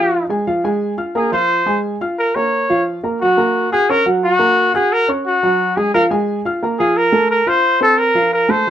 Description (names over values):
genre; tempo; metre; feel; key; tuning
jazz; 176 BPM; 4/4; straight; Bb minor; A4 = 435 Hz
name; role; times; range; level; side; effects
clear trumpet; melody; 0.0-8.7 s; Gb4 to Db5; -14 LUFS; left 1 dB; none
warm upright piano; accompaniment; 0.0-8.7 s; F3 to Gb6; -18 LUFS; right 1 dB; none
room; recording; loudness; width
wet small room reverb, RT60 0.5 s; rough home demo mix; -13 LUFS; side -10 dB against mid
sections
0.0-8.7 A section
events
trumpet solo 0.0-8.7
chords
0.0 Bb7(no3); 3.2 Gbadd9; 5.9 Bb5; 7.3 F